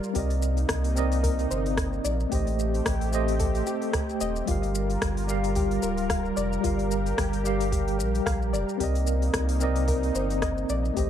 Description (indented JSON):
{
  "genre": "sunset chillout",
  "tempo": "111 BPM",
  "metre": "4/4",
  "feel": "swing 56% on 16ths",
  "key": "unclear",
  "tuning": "A4 = 440 Hz",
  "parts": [
    { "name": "tine electric piano", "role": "accompaniment", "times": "0.0-11.1 s", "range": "G3 to F5", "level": "-29 LUFS", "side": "equal", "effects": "fast stereo tremolo, auto-pan, tape echo" },
    { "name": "lush unison pad", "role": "sustained chords", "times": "0.0-11.1 s", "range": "C3 to Bb4", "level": "-34 LUFS", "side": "left 1 dB", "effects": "chorus" },
    { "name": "soft round pluck", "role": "arpeggios", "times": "0.0-11.1 s", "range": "F4 to F5", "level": "-35 LUFS", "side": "left 3 dB", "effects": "chorus, tape echo" },
    { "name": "deep house drum kit", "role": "drums", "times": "0.0-11.1 s", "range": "hi-hat, rim click, shaker", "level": "-33 LUFS", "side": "left 1 dB", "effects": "none" },
    { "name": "warm sub bass", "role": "bass", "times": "0.2-11.1 s", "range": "D1 to C2", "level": "-28 LUFS", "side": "equal", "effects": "none" },
    { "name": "electronic kick drum", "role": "drums", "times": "0.2-11.1 s", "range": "none", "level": "-31 LUFS", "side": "equal", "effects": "none" }
  ],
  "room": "light reverb",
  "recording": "dark, warm production",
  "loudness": "-24 LUFS",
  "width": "side -10 dB against mid",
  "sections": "0.0-11.1 A section",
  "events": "none",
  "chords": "0.2 Cm9; 2.3 Am7b5; 4.5 Gm7; 8.8 Cm9"
}